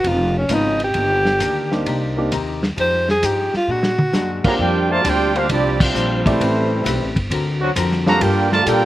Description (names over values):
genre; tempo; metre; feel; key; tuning
jazz, big band swing; 132 BPM; 4/4; swing 68% on 8ths; Bb major from 4.6 s; A4 = 440 Hz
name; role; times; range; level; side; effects
clear alto saxophone; melody; 0.0-4.5 s; Db4 to C5; -18 LUFS; equal; slapback echo
archtop guitar, miked and amplified; accompaniment; 0.0-8.9 s; Bb2 to B4; -27 LUFS; left 6 dB; slapback echo
upright bass; bass; 0.0-8.9 s; F1 to Bb2; -23 LUFS; equal; none
vintage drum kit; drums; 0.0-8.8 s; crash cymbal, hi-hat, kick drum, ride cymbal, snare drum, toms; -23 LUFS; equal; none
warm concert grand piano; accompaniment; 0.5-8.6 s; G3 to D5; -22 LUFS; equal; none
warm trombone section; second line; 4.4-8.9 s; C3 to G4; -22 LUFS; right 4 dB; slapback echo
mellow trumpet section; melody; 4.5-8.9 s; G3 to Bb5; -20 LUFS; right 2 dB; none
dark trombone section; sustained chords; 4.9-8.9 s; F#3 to C5; -22 LUFS; left 1 dB; none
room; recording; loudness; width
little or no reverb; recorded outdoors, with no room sound; -16 LUFS; side -14 dB against mid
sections
0.0-4.6 A section; 4.6-8.9 B section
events
alto saxophone solo 0.0-4.6; drum fill 3.7-4.1; band accent 5.7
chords
0.0 Db9; 0.9 Ebmaj7; 1.9 Cm7; 2.8 Fm9; 3.7 Bb7b13; 4.6 Bb69; 6.4 Am9; 7.3 D7alt; 8.2 Gm9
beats
0.04 0.49 | 0.95 1.40 1.86 2.31 | 2.77 3.22 3.67 4.13 | 4.58 5.03 5.49 5.94 | 6.39 6.85 7.30 7.75 | 8.21 8.66